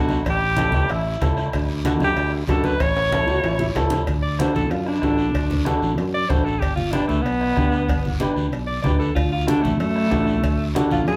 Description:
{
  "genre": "latin, cumbia",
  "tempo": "189 BPM",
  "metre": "4/4",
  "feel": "straight",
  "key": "D major",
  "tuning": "A4 = 439 Hz",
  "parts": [
    { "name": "clear alto saxophone", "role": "melody", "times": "0.0-11.2 s", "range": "A3 to D5", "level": "-25 LUFS", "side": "equal", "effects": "none" },
    { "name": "warm upright piano", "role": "accompaniment", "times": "0.0-11.0 s", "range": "C#4 to B4", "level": "-27 LUFS", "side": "equal", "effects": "none" },
    { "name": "sustaining fretless electric bass", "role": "bass", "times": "0.0-11.2 s", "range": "G1 to F#2", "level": "-27 LUFS", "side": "equal", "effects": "none" },
    { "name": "bombo", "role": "percussion", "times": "0.1-10.9 s", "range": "none", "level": "-29 LUFS", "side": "equal", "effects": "none" },
    { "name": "congas", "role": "percussion", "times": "0.1-11.1 s", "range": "none", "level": "-30 LUFS", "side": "equal", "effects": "none" },
    { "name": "guiro", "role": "percussion", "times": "0.1-11.2 s", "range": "none", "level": "-41 LUFS", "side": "equal", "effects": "none" },
    { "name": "cowbell and timbales", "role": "percussion", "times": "0.3-11.2 s", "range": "none", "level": "-36 LUFS", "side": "equal", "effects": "none" },
    { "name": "bright trombone", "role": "second line", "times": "3.1-4.1 s", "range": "C#4 to F#4", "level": "-31 LUFS", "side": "equal", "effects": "none" }
  ],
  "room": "wet small room reverb, RT60 0.5 s",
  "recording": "heard from further back in the room",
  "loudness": "-21 LUFS",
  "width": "mono",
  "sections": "0.0-4.1 A section; 4.1-11.2 B section",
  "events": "drum fill 2.8-4.1; alto saxophone solo 4.1-11.2",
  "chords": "0.3 A7; 1.5 D; 2.8 A; 4.1 D; 6.6 G; 9.2 D"
}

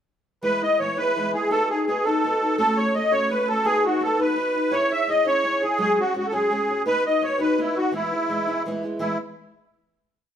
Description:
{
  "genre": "celtic folk",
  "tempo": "112 BPM (dotted quarters)",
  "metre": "6/8",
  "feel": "straight",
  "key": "E major",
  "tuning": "A4 = 440 Hz",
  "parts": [
    { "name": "musette accordion", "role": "melody", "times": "0.4-9.2 s", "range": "E4 to E5", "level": "-21 LUFS", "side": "equal", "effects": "none" },
    { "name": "picked old ladder-braced acoustic guitar", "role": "accompaniment", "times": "0.4-9.2 s", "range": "E3 to C#5", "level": "-26 LUFS", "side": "left 1 dB", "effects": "none" }
  ],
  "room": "wet stone room reverb, RT60 1.1 s",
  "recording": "band playing live in one room",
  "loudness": "-20 LUFS",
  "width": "side -9 dB against mid",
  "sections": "0.4-9.0 A section; 9.0-10.1 final chord",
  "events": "none",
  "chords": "0.4 E; 1.5 B; 2.6 F#m/A; 3.7 B; 4.7 C#m; 5.8 F#sus2; 6.9 B; 7.9 E"
}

